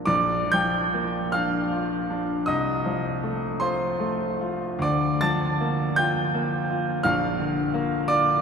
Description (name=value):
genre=classical, romantic nocturne for solo piano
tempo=41-59 BPM (dotted quarters)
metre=12/8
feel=rubato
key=Bb major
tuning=A4 = 443 Hz
part: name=bright grand piano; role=solo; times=0.0-8.4 s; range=Bb1 to A6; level=-22 LUFS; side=equal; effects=none
room=wet cathedral reverb, RT60 6.0 s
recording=minimal, uncompressed stereo recording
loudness=-22 LUFS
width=side -6 dB against mid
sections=0.1-8.4 A section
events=none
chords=0.1 Bb; 2.5 F7/C; 4.8 Bb/D; 7.1 Bb